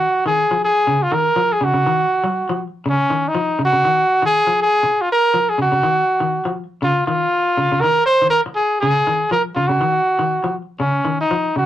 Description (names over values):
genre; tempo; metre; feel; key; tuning
afrobeat; 121 BPM; 4/4; swing 53% on 16ths; unclear; A4 = 445 Hz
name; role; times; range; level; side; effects
warm trumpet; melody; 0.0-11.7 s; Db4 to C5; -16 LUFS; equal; none
electric guitar at the edge of break-up; arpeggios; 0.0-11.7 s; Db3 to Gb3; -22 LUFS; left 2 dB; none
room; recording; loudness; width
light reverb; rough rehearsal-room recording, tube saturation; -15 LUFS; side -12 dB against mid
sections
0.0-11.7 A section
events
none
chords
0.0 Ebmadd11; 0.9 Db69; 1.9 Ebmadd9; 2.9 Dbadd9; 3.8 Ebmadd11; 4.8 Db6; 5.8 Ebmadd9; 6.8 Dbadd9; 7.8 Abadd9/Eb; 8.8 Dbadd9; 9.8 Ebmadd9; 10.8 Dbadd9